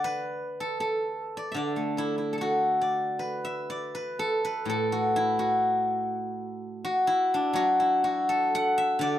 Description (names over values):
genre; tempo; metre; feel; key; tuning
chinese traditional, Chinese solo plucked strings; 71-85 BPM; 4/4; rubato; D gong mode; A4 = 439 Hz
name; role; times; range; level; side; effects
steel-string zither; solo; 0.0-9.2 s; A2 to F#5; -25 LUFS; equal; none
room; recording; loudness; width
light reverb; dry, close 1970s-style studio recording; -25 LUFS; side -12 dB against mid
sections
0.0-3.2 A section; 3.2-9.2 B section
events
none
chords
none